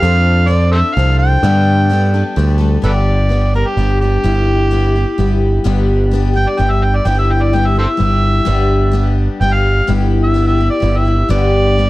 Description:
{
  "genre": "folk rock and heartland rock",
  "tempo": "128 BPM",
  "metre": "3/4",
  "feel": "straight",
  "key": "G major",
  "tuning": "A4 = 440 Hz",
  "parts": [
    { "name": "overdriven harmonica", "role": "melody", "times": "0.0-11.9 s", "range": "G4 to G5", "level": "-18 LUFS", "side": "right 1 dB", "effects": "none" },
    { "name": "picked twelve-string acoustic guitar", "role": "accompaniment", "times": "0.0-11.9 s", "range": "G2 to A4", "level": "-18 LUFS", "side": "left 4 dB", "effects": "none" },
    { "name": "modern bright picked electric bass", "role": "bass", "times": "0.0-11.9 s", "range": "G1 to G2", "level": "-13 LUFS", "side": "right 1 dB", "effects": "none" }
  ],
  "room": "small room ambience",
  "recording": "dark, warm production",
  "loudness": "-11 LUFS",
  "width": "side -18 dB against mid",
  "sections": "0.0-2.8 A section; 2.8-11.9 B section",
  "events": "harmonica solo 2.8-11.9",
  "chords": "0.0 F6; 1.4 Gadd9; 2.8 G; 4.2 Em/G; 5.6 G; 7.1 Em/G; 8.5 G; 9.9 Em/G; 11.3 G",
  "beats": "| 0.03 0.49 0.96 | 1.43 1.90 2.36 | 2.83 3.30 3.77 | 4.24 4.71 5.18 | 5.65 6.12 6.59 | 7.06 7.53 8.00 | 8.47 8.94 9.41 | 9.88 10.35 10.82 | 11.29 11.76"
}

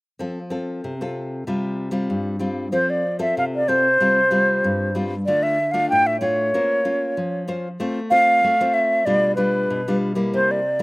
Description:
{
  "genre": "samba and choro",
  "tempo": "95 BPM",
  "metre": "4/4",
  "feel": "straight",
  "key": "F major",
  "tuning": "A4 = 443 Hz",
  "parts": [
    { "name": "nylon-string guitar", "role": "accompaniment", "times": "0.2-10.8 s", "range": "G2 to C5", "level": "-24 LUFS", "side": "left 1 dB", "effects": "none" },
    { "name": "hollow concert flute", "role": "melody", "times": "2.7-10.8 s", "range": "B4 to G5", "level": "-18 LUFS", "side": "equal", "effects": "slapback echo" }
  ],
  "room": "little or no reverb",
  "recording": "recorded outdoors, with no room sound",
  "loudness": "-18 LUFS",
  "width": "side -23 dB against mid",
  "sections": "0.2-2.7 A section; 2.7-10.8 B section",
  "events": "none",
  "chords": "0.2 F; 1.5 Csus4; 2.7 F; 4.0 Csus4; 5.3 Dm; 6.5 Bbmadd9; 7.8 F/A; 9.1 G7/B",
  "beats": "| 0.19 0.83 1.46 2.10 | 2.73 3.36 4.00 4.63 | 5.26 5.90 6.53 7.17 | 7.80 8.43 9.07 9.70 | 10.34"
}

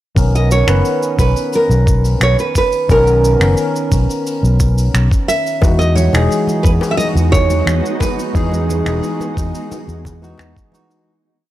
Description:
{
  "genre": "sunset chillout",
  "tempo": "88 BPM",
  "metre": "4/4",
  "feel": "straight",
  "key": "B major",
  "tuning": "A4 = 440 Hz",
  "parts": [
    { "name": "soft electric-piano-like synth keys", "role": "accompaniment", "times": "0.2-11.1 s", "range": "D#3 to B4", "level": "-20 LUFS", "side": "equal", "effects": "chorus, auto-pan, low-pass filter" },
    { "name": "fingered electric bass", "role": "bass", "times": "0.2-10.5 s", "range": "E1 to E2", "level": "-14 LUFS", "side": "equal", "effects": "tube saturation" },
    { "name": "electronic kick drum", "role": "drums", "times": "0.2-10.7 s", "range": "none", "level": "-16 LUFS", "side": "equal", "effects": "none" },
    { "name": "jazz brush drum kit", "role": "drums", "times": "0.2-11.0 s", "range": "cabasa, finger snaps, hi-hat", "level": "-25 LUFS", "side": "equal", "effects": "none" },
    { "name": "nylon-string guitar", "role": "melody", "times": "0.4-10.3 s", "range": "A#4 to E5", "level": "-18 LUFS", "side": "right 2 dB", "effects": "analog delay" },
    { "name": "shimmering ambient pad", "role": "sustained chords", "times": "6.6-11.0 s", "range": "E3 to F#4", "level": "-25 LUFS", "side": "right 1 dB", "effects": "chorus, built-in reverb" },
    { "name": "bongos and congas", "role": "percussion", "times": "5.6-11.0 s", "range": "none", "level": "-25 LUFS", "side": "left 4 dB", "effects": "none" }
  ],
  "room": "small room reverb",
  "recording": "dry, gritty hardware recording",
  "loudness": "-12 LUFS",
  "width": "side -14 dB against mid",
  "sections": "0.2-11.1 groove",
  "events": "filter sweep on synth keys 0.2-11.1; fade-out 7.4-11.1",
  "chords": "0.2 Bmaj9; 5.6 Emaj9",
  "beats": "| 0.17 0.85 1.53 2.21 | 2.89 3.58 4.26 4.94 | 5.62 6.30 6.98 7.67 | 8.35 9.03 9.71 10.39"
}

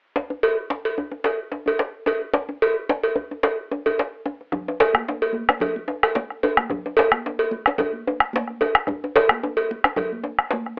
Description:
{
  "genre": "west african traditional, West African drum ensemble",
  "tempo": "110 BPM",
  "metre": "4/4",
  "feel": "swing 54% on 16ths",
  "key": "none",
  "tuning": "none",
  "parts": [
    { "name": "djembe", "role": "percussion", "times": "0.2-10.7 s", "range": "none", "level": "-24 LUFS", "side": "left 1 dB", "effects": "none" },
    { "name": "cowbell", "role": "percussion", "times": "0.4-10.1 s", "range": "none", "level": "-21 LUFS", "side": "right 1 dB", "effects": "none" },
    { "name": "bombo", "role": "percussion", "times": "4.5-10.7 s", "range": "none", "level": "-18 LUFS", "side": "equal", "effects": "none" },
    { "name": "congas", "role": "percussion", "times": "4.5-10.7 s", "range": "none", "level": "-34 LUFS", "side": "right 1 dB", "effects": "none" }
  ],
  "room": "wet small room ambience, RT60 0.5 s",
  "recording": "home recording on cassette, telephone sound",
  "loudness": "-20 LUFS",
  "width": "side -28 dB against mid",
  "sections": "0.2-4.5 A section; 4.5-10.8 B section",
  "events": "none",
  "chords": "none",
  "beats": "| 0.16 0.71 1.25 1.80 | 2.34 2.89 3.43 3.98 | 4.52 5.07 5.61 6.16 | 6.70 7.25 7.79 8.34 | 8.88 9.43 9.97 10.52"
}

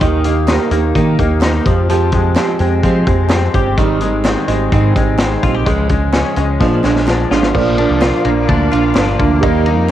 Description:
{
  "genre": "jangly indie pop",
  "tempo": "128 BPM",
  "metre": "4/4",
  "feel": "straight",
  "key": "unclear",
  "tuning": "A4 = 440 Hz",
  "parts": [
    { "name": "fingerpicked steel-string acoustic guitar", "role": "accompaniment", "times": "0.0-9.9 s", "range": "Ab2 to G4", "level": "-17 LUFS", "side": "right 7 dB", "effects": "cassette tape" },
    { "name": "direct-recorded clean electric guitar", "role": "arpeggios", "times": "0.0-9.9 s", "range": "Eb3 to G4", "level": "-19 LUFS", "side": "left 7 dB", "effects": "analog chorus, cassette tape, tape echo" },
    { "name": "deep dub picked electric bass", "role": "bass", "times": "0.0-9.9 s", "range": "G1 to F3", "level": "-16 LUFS", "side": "left 1 dB", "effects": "none" },
    { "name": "vintage drum kit", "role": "drums", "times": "0.0-9.8 s", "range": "crash cymbal, hi-hat, kick drum, ride cymbal, snare drum", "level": "-17 LUFS", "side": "left 1 dB", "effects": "cassette tape" },
    { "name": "group handclap", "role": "percussion", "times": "0.5-9.1 s", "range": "none", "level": "-34 LUFS", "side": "right 8 dB", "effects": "none" },
    { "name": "mellow reed electric piano", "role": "accompaniment", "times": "7.5-9.9 s", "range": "F4 to Eb5", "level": "-20 LUFS", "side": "right 6 dB", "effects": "fast tremolo, cassette tape" },
    { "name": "soft string machine", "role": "sustained chords", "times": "7.9-9.9 s", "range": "Bb4 to Eb6", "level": "-25 LUFS", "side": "left 1 dB", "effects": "phaser, ensemble chorus, cassette tape" }
  ],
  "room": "light reverb, small room ambience",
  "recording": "home recording on cassette",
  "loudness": "-11 LUFS",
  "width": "side -12 dB against mid",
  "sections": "0.0-7.5 A section; 7.5-9.9 B section",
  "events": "drum fill 6.6-7.5",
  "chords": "0.0 Eb; 1.7 Fmadd9; 3.8 Abmaj7; 5.7 Db; 6.6 Bb7; 7.5 Bb",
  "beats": "| 0.01 0.48 0.96 1.43 | 1.90 2.37 2.84 3.31 | 3.78 4.25 4.72 5.19 | 5.66 6.13 6.60 7.08 | 7.55 8.02 8.49 8.96 | 9.43 9.90"
}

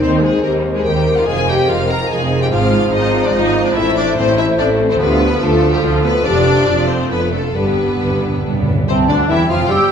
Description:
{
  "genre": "classical, dramatic, fast romantic movement for symphony orchestra",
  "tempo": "144 BPM",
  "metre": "3/4",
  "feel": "rubato",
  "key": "C major from 3.8 s",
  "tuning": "A4 = 440 Hz",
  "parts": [
    { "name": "warm symphonic violin section", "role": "melody", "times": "0.0-9.9 s", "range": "F4 to Bb5", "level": "-21 LUFS", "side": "left 4 dB", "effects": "none" },
    { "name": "dark clarinet", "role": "second line", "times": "0.0-9.8 s", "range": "C4 to C5", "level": "-24 LUFS", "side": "left 1 dB", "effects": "none" },
    { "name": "rich symphonic violin section", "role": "second line", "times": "0.0-9.9 s", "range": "G3 to G4", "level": "-23 LUFS", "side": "left 4 dB", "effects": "none" },
    { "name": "clear bassoon", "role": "accompaniment", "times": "0.0-9.9 s", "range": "C3 to A3", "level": "-24 LUFS", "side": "right 2 dB", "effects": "none" },
    { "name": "rich symphonic viola section", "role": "accompaniment", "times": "0.0-9.9 s", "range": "F3 to Bb4", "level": "-22 LUFS", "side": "right 1 dB", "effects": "none" },
    { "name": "dark French horn section", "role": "sustained chords", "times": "0.0-9.9 s", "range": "C3 to Bb4", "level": "-19 LUFS", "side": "left 3 dB", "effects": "none" },
    { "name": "clear symphonic double bass section", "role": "bass", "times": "0.0-9.8 s", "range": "E1 to Eb2", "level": "-22 LUFS", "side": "right 4 dB", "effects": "none" },
    { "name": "rich symphonic cello section", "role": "bass", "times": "0.0-9.8 s", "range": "C2 to A2", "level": "-21 LUFS", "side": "right 3 dB", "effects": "none" },
    { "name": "timpani", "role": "percussion", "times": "7.5-8.9 s", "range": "G2", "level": "-21 LUFS", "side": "right 1 dB", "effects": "none" },
    { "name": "bright large flute ensemble", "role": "second line", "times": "8.9-9.9 s", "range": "G5 to E6", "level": "-18 LUFS", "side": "right 2 dB", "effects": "none" }
  ],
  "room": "wet recital hall reverb, RT60 1.3 s",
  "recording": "recorded in a church or concert hall",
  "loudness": "-12 LUFS",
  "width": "side -7 dB against mid",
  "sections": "0.0-8.9 A section; 8.9-9.9 B section",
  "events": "timpani fill 7.5-8.9",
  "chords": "0.0 Cm/Eb; 1.3 Fm7; 2.5 Fm/Ab; 3.8 Am; 5.0 Dm; 6.2 Dm/F; 7.5 G; 8.9 C",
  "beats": "| 0.02 0.44 0.85 | 1.28 1.69 2.11 | 2.52 2.93 3.34 | 3.76 4.17 4.58 | 5.00 5.41 5.83 | 6.25 6.67 7.11 | 7.55 8.00 8.45 | 8.89 9.30 9.70"
}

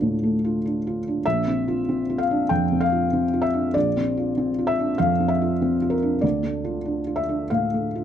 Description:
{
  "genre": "neoclassical minimalist piano",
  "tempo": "96 BPM",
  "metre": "4/4",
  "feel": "rubato",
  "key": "unclear",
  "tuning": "A4 = 440 Hz",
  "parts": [
    { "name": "felt-muted upright piano", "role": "solo", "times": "0.0-8.0 s", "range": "Bb1 to G5", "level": "-20 LUFS", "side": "equal", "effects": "none" }
  ],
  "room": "light reverb",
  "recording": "dark, warm production",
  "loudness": "-20 LUFS",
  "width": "side -9 dB against mid",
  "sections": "0.0-8.0 A section",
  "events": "none",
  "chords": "0.0 Dm; 1.2 Bbadd9; 6.2 Dm",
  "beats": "0.00 0.63 | 1.25 1.87 2.50 3.12 | 3.75 4.37 4.98 5.61 | 6.23 6.87 7.51"
}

